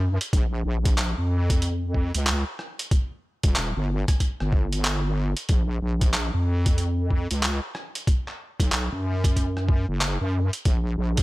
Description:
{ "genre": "glitch hop", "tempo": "93 BPM", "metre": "4/4", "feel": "swing 62% on 16ths", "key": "unclear", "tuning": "A4 = 442 Hz", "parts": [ { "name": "wobble bass", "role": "bass", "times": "0.0-11.2 s", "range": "Eb1 to F#2", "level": "-24 LUFS", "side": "equal", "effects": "chorus, overdrive" }, { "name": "boom bap sampler-style drum kit", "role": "drums", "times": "0.2-11.2 s", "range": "handclaps, hi-hat, rim click", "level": "-28 LUFS", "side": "equal", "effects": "none" }, { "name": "electronic kick drum", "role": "drums", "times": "0.3-11.2 s", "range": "none", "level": "-22 LUFS", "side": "equal", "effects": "none" } ], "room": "little or no reverb", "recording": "none", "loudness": "-22 LUFS", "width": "side -19 dB against mid", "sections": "0.0-11.2 A section", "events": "none", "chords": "none", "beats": "| 0.33 0.98 1.62 2.27 | 2.91 3.56 4.20 4.85 | 5.49 6.14 6.78 7.43 | 8.07 8.72 9.36 10.01 | 10.65" }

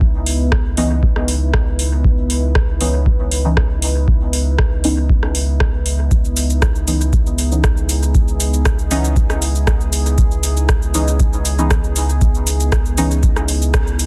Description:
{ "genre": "dub techno", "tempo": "118 BPM", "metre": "4/4", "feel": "straight", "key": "C# minor", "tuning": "A4 = 440 Hz", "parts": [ { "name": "deep dark ambient pad", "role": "sustained chords", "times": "0.0-14.1 s", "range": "B3 to B4", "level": "-29 LUFS", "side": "equal", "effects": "chorus, built-in reverb, sidechain pumping" }, { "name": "warm sub bass", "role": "bass", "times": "0.0-14.1 s", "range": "C#2", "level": "-21 LUFS", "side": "equal", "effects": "tube saturation, sidechain pumping" }, { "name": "electronic kick drum", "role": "drums", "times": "0.0-13.8 s", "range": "none", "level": "-18 LUFS", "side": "equal", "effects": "none" }, { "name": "booming analog drum machine", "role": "drums", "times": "0.3-14.1 s", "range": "cabasa, hi-hat, rim click", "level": "-24 LUFS", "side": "equal", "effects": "soft clipping on snare" }, { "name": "deep mellow chord stab", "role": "stabs", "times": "0.8-13.1 s", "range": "E3 to D#4", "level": "-26 LUFS", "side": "equal", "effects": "chorus, phaser, cassette tape, sidechain pumping, dub echo" } ], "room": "little or no reverb", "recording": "dense, heavily limited modern master", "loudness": "-16 LUFS", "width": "mono", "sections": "0.0-14.1 A section", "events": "filter sweep on synth stab 0.0-14.1; band accent 13.7", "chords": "0.0 C#m9", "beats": "| 0.01 0.52 1.03 1.54 | 2.04 2.55 3.06 3.57 | 4.08 4.59 5.09 5.60 | 6.11 6.62 7.13 7.64 | 8.15 8.65 9.16 9.67 | 10.18 10.69 11.20 11.71 | 12.21 12.72 13.23 13.74" }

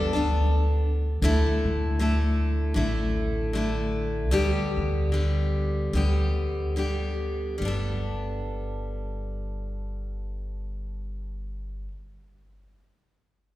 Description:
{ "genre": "acoustic folk duo or small band", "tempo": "70-79 BPM", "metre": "4/4", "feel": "swing 57% on 8ths", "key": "G major", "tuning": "A4 = 440 Hz", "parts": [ { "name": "picked steel-string acoustic guitar", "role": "accompaniment", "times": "0.0-12.0 s", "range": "D3 to A4", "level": "-28 LUFS", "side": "left 1 dB", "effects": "none" }, { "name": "upright bass", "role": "bass", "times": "0.0-11.9 s", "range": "G1 to D2", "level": "-26 LUFS", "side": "equal", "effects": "none" } ], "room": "wet concert hall reverb, RT60 2.3 s", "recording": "heard from further back in the room", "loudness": "-24 LUFS", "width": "side -15 dB against mid", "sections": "0.0-1.2 A section; 1.2-7.6 B section; 7.6-11.0 C section", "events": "slowing down 1.2-7.6", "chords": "0.0 Gadd9; 1.2 Dsus2; 4.3 G/D; 7.6 Gadd9", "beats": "0.46 | 1.22 1.99 2.76 3.53 | 4.32 5.12 5.93 6.76 | 7.61 8.47 9.32 10.18" }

